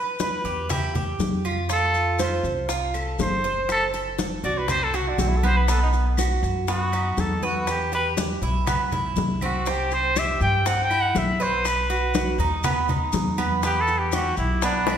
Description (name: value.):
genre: latin, Cuban son and guajira.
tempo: 121 BPM.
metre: 4/4.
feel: straight.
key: E minor.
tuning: A4 = 440 Hz.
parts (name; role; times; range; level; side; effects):
Cuban tres; arpeggios; 0.0-15.0 s; B3 to C5; -27 LUFS; right 4 dB; none.
warm trumpet; melody; 0.2-15.0 s; C4 to G5; -25 LUFS; equal; none.
bongos; percussion; 0.2-15.0 s; none; -32 LUFS; left 6 dB; none.
congas; percussion; 0.2-15.0 s; none; -30 LUFS; left 2 dB; none.
maracas; percussion; 0.2-15.0 s; none; -37 LUFS; left 6 dB; none.
upright bass; bass; 0.4-15.0 s; F#1 to G2; -26 LUFS; equal; none.
claves; percussion; 0.7-15.0 s; none; -39 LUFS; left 1 dB; none.
room: wet recital hall reverb, RT60 1.4 s.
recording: recorded in a church or concert hall.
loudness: -21 LUFS.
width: side -8 dB against mid.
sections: 0.0-15.0 A section.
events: trumpet solo 0.0-15.0.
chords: 0.0 Em; 1.7 F; 3.7 F#dim; 5.7 B; 7.7 Em; 11.6 B; 13.6 Em.